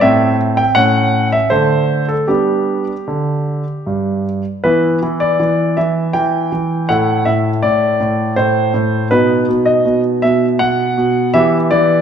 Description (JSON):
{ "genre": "classical-period piano sonatina", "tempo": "81 BPM", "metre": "3/4", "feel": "rubato", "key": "G major, E minor from 4.6 s", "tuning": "A4 = 440 Hz", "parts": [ { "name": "clear concert grand piano", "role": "solo", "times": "0.0-12.0 s", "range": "G2 to G5", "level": "-12 LUFS", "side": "equal", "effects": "none" } ], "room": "wet recital hall reverb, RT60 1.4 s", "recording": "dark, warm production", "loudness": "-13 LUFS", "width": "side -8 dB against mid", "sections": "0.0-4.6 A section; 4.6-12.0 B section", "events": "none", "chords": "0.0 Am; 0.8 A; 1.5 D5; 2.3 G; 4.6 Em; 6.9 Am; 9.1 B; 11.3 Em" }